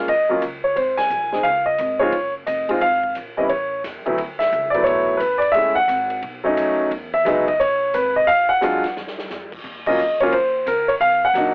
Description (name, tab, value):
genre	jazz piano trio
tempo	176 BPM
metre	4/4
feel	swing 64% on 8ths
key	unclear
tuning	A4 = 440 Hz
part	warm concert grand piano	melody	0.0-11.5 s	D2 to Ab5	-16 LUFS	equal	cassette tape
part	upright bass	bass	0.0-11.5 s	F1 to Gb2	-36 LUFS	equal	none
part	swinging big-band drum kit	drums	0.1-11.5 s	crash cymbal, hi-hat, kick drum, ride cymbal, snare drum	-33 LUFS	equal	cassette tape
room	light reverb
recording	home recording on cassette, telephone sound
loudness	-17 LUFS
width	side -34 dB against mid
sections	0.0-4.2 A section; 4.2-11.5 B section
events	band accent 0.9, 4.4, 9.8; drum fill 9.0-9.3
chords	0.1 Eb7(no3); 0.8 Abadd9; 1.4 Db; 3.5 A; 4.2 D6; 5.5 Gbm9; 6.2 Cb9; 6.9 Emaj7; 8.3 Bb5; 9.6 Eb7sus2; 11.0 Cm7b5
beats	| 0.08 0.42 0.76 1.10 | 1.45 1.79 2.13 2.47 | 2.81 3.16 3.50 3.84 | 4.18 4.52 4.87 5.21 | 5.55 5.89 6.23 6.57 | 6.92 7.26 7.60 7.94 | 8.28 8.62 8.96 9.30 | 9.65 9.99 10.33 10.67 | 11.01 11.35